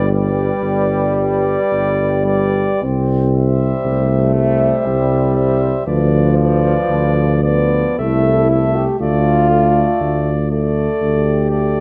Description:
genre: classical, hymn-like piece for brass band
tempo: 51-61 BPM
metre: 3/4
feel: rubato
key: unclear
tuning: A4 = 440 Hz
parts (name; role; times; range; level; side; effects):
- clear flugelhorn; melody; 0.0-11.8 s; D5 to E5; -26 LUFS; equal; none
- warm French horn section; second line; 0.0-11.8 s; A4 to C5; -26 LUFS; equal; none
- bright trombone; accompaniment; 0.0-11.8 s; F3 to A3; -27 LUFS; equal; none
- warm euphonium; accompaniment; 0.0-11.8 s; F3 to G4; -21 LUFS; equal; none
- mellow tuba; bass; 0.0-11.8 s; G1 to D2; -19 LUFS; equal; none
room: moderate recital hall reverb, RT60 1.3 s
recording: close, detailed microphones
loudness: -16 LUFS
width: mono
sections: 0.0-11.8 A section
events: none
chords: 0.0 G; 2.8 C; 5.9 Bdim/D; 8.0 Am/C; 9.0 Dm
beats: 0.63 1.69 | 2.83 3.85 4.85 | 5.86 6.88 7.98 | 8.99 9.99 11.00

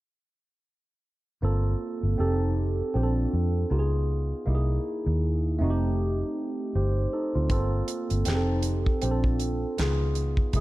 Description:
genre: R&B, neo-soul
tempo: 79 BPM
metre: 4/4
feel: swing 57% on 16ths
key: unclear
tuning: A4 = 440 Hz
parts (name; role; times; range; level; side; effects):
- barky tine electric piano; accompaniment; 1.4-10.6 s; A3 to C5; -29 LUFS; right 1 dB; phaser
- vintage muted fingered electric bass; bass; 1.4-10.6 s; F1 to F2; -25 LUFS; equal; none
- damped 70s drum kit; drums; 7.5-10.6 s; handclaps, hi-hat, kick drum, snare drum; -28 LUFS; equal; none
room: little or no reverb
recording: none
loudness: -24 LUFS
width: side -17 dB against mid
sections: 1.4-10.6 A section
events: none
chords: 1.4 Gm11; 2.2 F9; 2.9 Bbmaj9; 3.7 C#9; 4.5 C7alt; 5.6 F9; 7.5 Gm11; 8.3 F9; 9.0 Bbmaj9; 9.8 C#9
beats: | 1.42 2.18 2.94 3.70 | 4.46 5.22 5.98 6.74 | 7.50 8.26 9.02 9.77 | 10.53

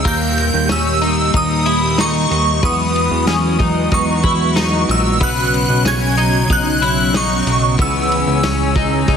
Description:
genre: dream pop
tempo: 93 BPM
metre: 4/4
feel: straight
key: unclear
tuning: A4 = 439 Hz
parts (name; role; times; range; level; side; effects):
- shimmering bell with halo; melody; 0.0-9.2 s; C#6 to G#6; -19 LUFS; right 2 dB; ensemble chorus, phaser, ping-pong delay
- ensemble organ-string; sustained chords; 0.0-9.2 s; A#2 to G#4; -20 LUFS; right 1 dB; ensemble chorus
- twelve-string electric guitar; arpeggios; 0.0-9.2 s; A#3 to E4; -21 LUFS; left 5 dB; analog chorus, ping-pong delay
- fat analog bass; bass; 0.0-9.2 s; A#1 to E2; -20 LUFS; equal; none
- vintage drum kit; drums; 0.1-9.2 s; kick drum, ride cymbal, snare drum, tambourine; -22 LUFS; equal; none
room: light reverb, studio ambience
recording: dense, heavily limited modern master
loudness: -13 LUFS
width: side -7 dB against mid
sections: 0.0-9.2 A section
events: none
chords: 0.1 D#; 2.6 Eadd9; 5.2 Bsus2; 7.8 C#m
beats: | 0.05 0.69 1.34 1.99 | 2.63 3.28 3.92 4.57 | 5.21 5.86 6.50 7.15 | 7.79 8.44 9.08

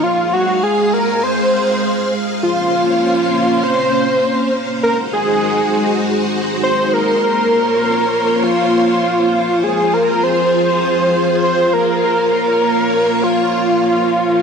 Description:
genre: synthwave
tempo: free time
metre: none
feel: none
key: Bb minor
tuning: A4 = 439 Hz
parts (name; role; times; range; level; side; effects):
- wide unison lead; melody; 0.0-14.4 s; F4 to C5; -15 LUFS; equal; ping-pong delay
- string machine, full ensemble; sustained chords; 0.0-14.4 s; F3 to F5; -18 LUFS; equal; ensemble chorus
room: moderate lush hall reverb, RT60 2.5 s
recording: none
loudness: -13 LUFS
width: side -6 dB against mid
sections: 0.0-14.4 A section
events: none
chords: 0.0 Fm; 2.4 Bbmadd9; 4.8 Ab7; 7.2 Bbmadd9; 9.6 Fm; 12.0 Bbmadd9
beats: free time

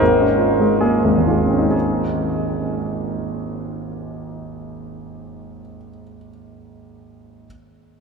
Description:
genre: classical, romantic character piece for solo piano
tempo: 60-81 BPM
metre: 2/4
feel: rubato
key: Ab major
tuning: A4 = 444 Hz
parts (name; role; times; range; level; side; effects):
- clear concert grand piano; solo; 0.0-7.5 s; Ab1 to Bb4; -18 LUFS; equal; none
room: wet cathedral reverb, RT60 6.0 s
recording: in a vast, echoing space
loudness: -16 LUFS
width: side -5 dB against mid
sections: 0.0-1.7 A section; 1.7-5.2 B section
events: slowing down 0.0-1.7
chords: 0.0 Db/Ab; 1.7 Ab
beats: | 0.00 0.80 | 1.73 2.59 | 3.45 4.34

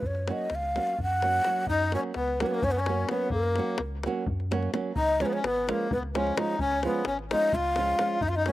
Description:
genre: balkan folk, Balkan wedding band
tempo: 257 BPM (eighths)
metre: 7/8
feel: straight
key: F# major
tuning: A4 = 441 Hz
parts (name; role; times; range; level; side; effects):
- breathy mellow ney; melody; 0.0-8.5 s; A#4 to F#5; -28 LUFS; equal; slapback echo
- pure sine sub bass; bass; 0.0-8.5 s; G#1 to F#2; -32 LUFS; equal; none
- davul; percussion; 0.0-8.5 s; none; -34 LUFS; left 2 dB; none
- flamenco guitar; accompaniment; 0.3-8.5 s; E#3 to F#4; -32 LUFS; right 5 dB; slapback echo
- accordion; second line; 1.7-8.5 s; A#3 to E#4; -30 LUFS; left 3 dB; slapback echo
room: little or no reverb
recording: recorded outdoors, with no room sound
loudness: -25 LUFS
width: side -15 dB against mid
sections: 0.0-1.7 A section; 1.7-8.5 A section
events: none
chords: 0.0 F#; 5.0 C#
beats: | 0.03 0.27 0.50 0.74 0.97 1.21 1.44 | 1.68 1.92 2.15 2.38 2.62 2.85 3.09 | 3.32 3.56 3.79 4.03 4.26 4.49 4.72 | 4.96 5.19 5.42 5.66 5.89 6.12 6.36 | 6.59 6.82 7.05 7.29 7.52 7.75 7.98 | 8.22 8.45

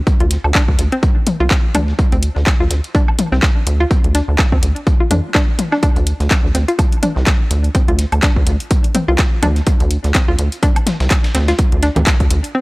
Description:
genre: minimal techno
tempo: 125 BPM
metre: 4/4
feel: swing 57% on 16ths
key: D minor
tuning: A4 = 440 Hz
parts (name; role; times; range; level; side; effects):
- breakbeat sampler-style drum kit; drums; 0.1-12.4 s; hi-hat, snare drum; -32 LUFS; equal; none
- electronic kick drum; drums; 0.1-12.3 s; none; -14 LUFS; equal; overdrive
- hollow square pluck; riff; 0.2-12.6 s; C4 to F4; -22 LUFS; equal; chorus, sidechain pumping, tape echo
- rubbery square bass; bass; 0.2-12.4 s; C2 to F2; -15 LUFS; equal; tube saturation, sidechain pumping
- garage drum kit; drums; 0.2-12.5 s; handclaps, hi-hat; -21 LUFS; equal; none
- electronic woodblock, toms and congas; percussion; 0.4-12.2 s; none; -20 LUFS; left 2 dB; analog delay
room: digital ambience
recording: dry, gritty hardware recording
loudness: -12 LUFS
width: side -23 dB against mid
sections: 0.0-12.6 A section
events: none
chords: none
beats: | 0.07 0.55 1.03 1.51 | 1.99 2.47 2.95 3.43 | 3.91 4.39 4.87 5.35 | 5.83 6.31 6.79 7.27 | 7.75 8.23 8.71 9.19 | 9.67 10.15 10.63 11.11 | 11.59 12.07 12.55

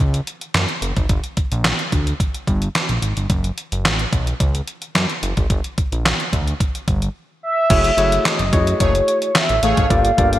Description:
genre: early-eighties boogie funk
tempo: 109 BPM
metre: 4/4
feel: straight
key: unclear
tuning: A4 = 440 Hz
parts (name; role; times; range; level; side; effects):
- fat analog bass; bass; 0.0-10.4 s; F#1 to F#2; -20 LUFS; equal; none
- detuned 8-bit digital drum machine; drums; 0.1-10.4 s; crash cymbal, handclaps, hi-hat, kick drum, snare drum; -19 LUFS; equal; gated reverb
- mellow horn-like synth lead; melody; 7.4-10.4 s; C#5 to E#5; -18 LUFS; equal; chorus
- barky tine electric piano; accompaniment; 7.7-10.4 s; A3 to D5; -23 LUFS; left 2 dB; none
- analog synth brass; second line; 8.8-9.9 s; A3 to C#5; -24 LUFS; left 1 dB; chorus
room: light reverb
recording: bright 1980s-style digital production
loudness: -16 LUFS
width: side -14 dB against mid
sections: 0.0-7.7 A section; 7.7-10.4 B section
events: none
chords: 0.0 F#sus2; 1.1 Gm; 3.3 F#m; 5.5 Gm; 7.7 F#m9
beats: 0.00 0.55 | 1.10 1.65 2.20 2.75 | 3.30 3.85 4.40 4.95 | 5.50 6.05 6.60 7.15 | 7.70 8.25 8.80 9.35 | 9.90

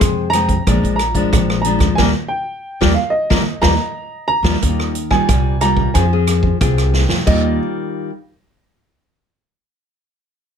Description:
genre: samba and choro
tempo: 91 BPM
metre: 4/4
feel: straight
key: Eb major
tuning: A4 = 440 Hz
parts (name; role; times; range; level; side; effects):
- dark baby grand piano; melody; 0.0-7.6 s; Eb5 to C6; -21 LUFS; right 2 dB; none
- nylon-string guitar; accompaniment; 0.0-8.1 s; F2 to Ab4; -19 LUFS; left 3 dB; none
- upright bass; bass; 0.0-7.6 s; Bb1 to F2; -18 LUFS; equal; none
- swinging big-band drum kit; drums; 0.0-7.4 s; crash cymbal, hi-hat, kick drum, rim click, snare drum; -18 LUFS; right 1 dB; none
room: light reverb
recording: none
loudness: -14 LUFS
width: side -7 dB against mid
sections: 0.0-4.6 A section; 4.6-7.3 B section; 7.3-9.9 C section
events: band accent 2.0-4.6; drum fill 6.9-7.3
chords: 0.0 Fm; 0.7 Bb7; 2.0 Ebadd9; 5.9 Fm; 7.3 Ebadd9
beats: 0.01 0.67 1.33 | 1.99 2.65 3.31 3.97 | 4.63 5.29 5.94 6.60 | 7.26 7.92

